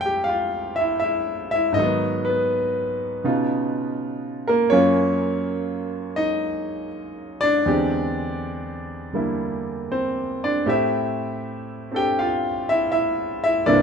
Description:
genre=solo jazz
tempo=81 BPM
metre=4/4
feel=swing 69% on 8ths, rubato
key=unclear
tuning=A4 = 441 Hz
part: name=clear concert grand piano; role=solo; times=0.0-13.8 s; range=C2 to G5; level=-20 LUFS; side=equal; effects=none
room=light reverb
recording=minimal, uncompressed stereo recording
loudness=-20 LUFS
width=side -6 dB against mid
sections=0.0-13.8 A section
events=none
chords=0.0 Fmaj9; 1.8 Abm7; 3.2 Db9; 4.7 Gbmaj7; 7.7 E7alt; 10.7 Am7

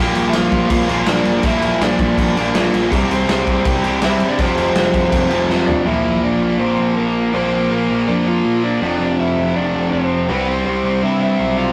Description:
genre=punk rock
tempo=163 BPM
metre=4/4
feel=straight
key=unclear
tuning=A4 = 440 Hz
part: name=overdriven electric guitar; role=melody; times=0.0-11.7 s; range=Bb3 to G5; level=-24 LUFS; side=equal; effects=none
part: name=distorted electric guitar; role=riff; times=0.0-11.7 s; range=F2 to C4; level=-20 LUFS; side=equal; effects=overdrive
part: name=tight distorted guitar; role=riff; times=0.0-11.7 s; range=F2 to C4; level=-26 LUFS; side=equal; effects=distortion
part: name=growling picked electric bass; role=bass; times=0.0-11.7 s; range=F1 to Bb2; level=-27 LUFS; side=equal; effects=overdrive
part: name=raw garage drum kit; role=drums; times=0.2-5.8 s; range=crash cymbal, kick drum, snare drum, toms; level=-21 LUFS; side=equal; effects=none
room=moderate small room reverb, RT60 0.6 s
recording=rough rehearsal-room recording, warm saturation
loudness=-17 LUFS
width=mono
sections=0.0-5.9 A section; 5.9-11.7 B section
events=drum fill 5.5-5.9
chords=0.0 Bb; 2.9 C; 4.4 F5; 5.9 Bb; 8.8 F5; 10.3 C

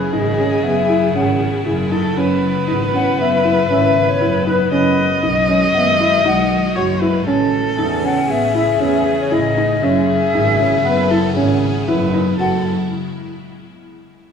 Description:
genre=contemporary instrumental, chamber music in an uneven meter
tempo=118 BPM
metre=5/4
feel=straight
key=unclear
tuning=A4 = 444 Hz
part: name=mellow jazz flute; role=melody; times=0.0-12.6 s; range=B4 to F#5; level=-19 LUFS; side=left 5 dB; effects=none
part: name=warm viola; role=second line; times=0.0-12.6 s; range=G#4 to D#5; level=-20 LUFS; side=equal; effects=none
part: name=evolving wavetable pad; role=sustained chords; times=0.0-12.6 s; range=C#3 to G#5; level=-25 LUFS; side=left 3 dB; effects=ensemble chorus, built-in reverb
part: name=felt-muted upright piano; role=arpeggios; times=0.1-12.6 s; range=B3 to F#4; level=-20 LUFS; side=right 2 dB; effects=none
part: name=warm double bass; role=bass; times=0.1-12.6 s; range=F#1 to E2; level=-21 LUFS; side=right 1 dB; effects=none
room=wet recital hall reverb, RT60 1.8 s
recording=none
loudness=-14 LUFS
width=side -7 dB against mid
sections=0.0-12.4 A section; 12.4-14.3 B section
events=none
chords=0.0 Emaj9/F#; 7.3 Amaj7; 9.8 C#m7/F#; 12.4 F#m9

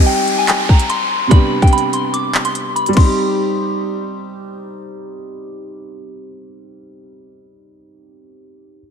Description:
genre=hip hop, drill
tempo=145 BPM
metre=4/4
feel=half-time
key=C minor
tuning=A4 = 439 Hz
part: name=soft synth bell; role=melody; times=0.0-4.2 s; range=G5 to D6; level=-19 LUFS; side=left 1 dB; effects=chorus, phaser, low-pass filter, analog delay
part: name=dark grand piano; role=accompaniment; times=0.0-8.8 s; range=C3 to G4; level=-21 LUFS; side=right 1 dB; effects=wide subtle chorus, low-pass filter
part: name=drill drum kit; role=drums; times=0.0-3.1 s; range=crash cymbal, handclaps, hi-hat, kick drum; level=-13 LUFS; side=equal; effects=none
part: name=downlifter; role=sound effects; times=0.0-3.0 s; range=none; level=-24 LUFS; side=equal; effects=none
room=moderate lush hall reverb, RT60 2.0 s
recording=dreamy mix soaked in reverb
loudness=-13 LUFS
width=side -7 dB against mid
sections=0.0-3.0 A section; 3.0-6.3 B section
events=break 2.1-3.0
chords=0.0 Cm; 1.3 G/C; 3.0 Cm

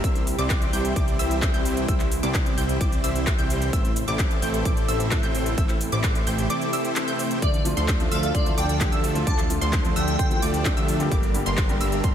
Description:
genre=EDM, festival progressive house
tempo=130 BPM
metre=4/4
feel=straight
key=D minor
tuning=A4 = 441 Hz
part: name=lush unison pad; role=sustained chords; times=0.0-12.1 s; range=Bb2 to A4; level=-31 LUFS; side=equal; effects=chorus, phaser, sidechain pumping
part: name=wide unison pluck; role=arpeggios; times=0.0-12.1 s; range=C6 to G6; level=-32 LUFS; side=right 1 dB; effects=sidechain pumping, tape echo
part: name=supersaw chords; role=riff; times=0.0-12.1 s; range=F3 to G5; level=-29 LUFS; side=equal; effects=cassette tape, sidechain pumping, tape echo
part: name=fat analog bass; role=bass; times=0.0-12.1 s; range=G1 to D2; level=-28 LUFS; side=equal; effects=sidechain pumping
part: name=big-room dance drum kit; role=drums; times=0.0-12.1 s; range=handclaps, hi-hat, shaker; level=-31 LUFS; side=equal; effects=none
part: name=electronic kick drum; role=drums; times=0.0-12.1 s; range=none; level=-24 LUFS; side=equal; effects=none
part: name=airy dreamy lead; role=melody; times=7.4-10.4 s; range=D5 to A5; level=-31 LUFS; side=equal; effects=chorus, tape echo
part: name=felt-muted upright piano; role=accompaniment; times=7.6-12.1 s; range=G2 to G4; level=-30 LUFS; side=right 1 dB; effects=sidechain pumping, tape echo
room=light reverb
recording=none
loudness=-20 LUFS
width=side -9 dB against mid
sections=0.0-12.1 A section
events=none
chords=0.0 C; 3.7 Am; 7.4 Dm; 11.1 Gm

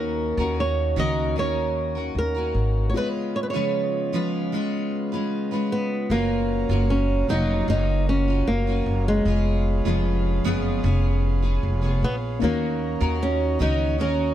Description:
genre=acoustic pop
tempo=76 BPM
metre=4/4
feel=straight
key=F# major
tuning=A4 = 442 Hz
part: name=flamenco guitar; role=melody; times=0.0-14.3 s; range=G#3 to D#5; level=-26 LUFS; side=right 1 dB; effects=none
part: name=dark upright piano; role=accompaniment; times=0.0-6.1, 12.4-14.3 s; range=A#3 to C#5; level=-33 LUFS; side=left 6 dB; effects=none
part: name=picked steel-string acoustic guitar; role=accompaniment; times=0.0-14.3 s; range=E#2 to B4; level=-27 LUFS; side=equal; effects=double-tracked left and right
part: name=pedal harmonium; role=sustained chords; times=0.0-14.3 s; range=C#3 to B5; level=-34 LUFS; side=right 3 dB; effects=none
part: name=upright bass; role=bass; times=0.0-14.3 s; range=E#1 to D#2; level=-24 LUFS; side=equal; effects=none
room=small room ambience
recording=dry, close 1970s-style studio recording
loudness=-21 LUFS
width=side -12 dB against mid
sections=0.0-6.1 A section; 6.1-14.3 A section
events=none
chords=0.0 D#m7; 2.9 C#7; 6.1 F#maj7; 9.3 C#7/E#; 12.4 D#m7

